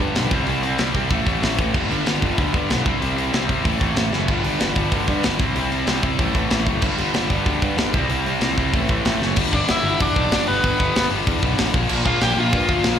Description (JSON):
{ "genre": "punk rock", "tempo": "189 BPM", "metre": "4/4", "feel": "straight", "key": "unclear", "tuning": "A4 = 444 Hz", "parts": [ { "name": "distorted electric guitar", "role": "riff", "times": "0.0-9.4 s", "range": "G2 to E4", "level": "-27 LUFS", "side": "right 14 dB", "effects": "distortion" }, { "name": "heavy high-gain guitar", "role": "riff", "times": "0.0-13.0 s", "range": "G2 to C4", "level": "-28 LUFS", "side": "right 2 dB", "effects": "distortion" }, { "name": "tight distorted guitar", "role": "riff", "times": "0.0-13.0 s", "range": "G2 to C4", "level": "-24 LUFS", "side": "left 11 dB", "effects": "distortion, slapback echo" }, { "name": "fuzz picked electric bass", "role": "bass", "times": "0.0-13.0 s", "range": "F#1 to G2", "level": "-24 LUFS", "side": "right 1 dB", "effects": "overdrive" }, { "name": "tight metal drum kit", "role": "drums", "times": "0.0-12.9 s", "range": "crash cymbal, hi-hat, kick drum, snare drum", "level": "-23 LUFS", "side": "equal", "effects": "none" }, { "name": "overdriven electric guitar", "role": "melody", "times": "9.5-13.0 s", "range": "B3 to G5", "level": "-21 LUFS", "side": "equal", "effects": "none" } ], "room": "little or no reverb", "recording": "live gig heard through the venue's PA, club reverb", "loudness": "-18 LUFS", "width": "side -9 dB against mid", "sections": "0.0-9.4 A section; 9.4-13.0 B section", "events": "drum fill 4.1, 9.2", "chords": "0.3 C; 1.1 Am; 1.7 G; 2.9 C; 3.7 Am; 4.3 G; 5.4 C; 6.2 Am; 6.8 G; 7.9 C; 8.7 Am; 9.4 G; 11.7 Bb5" }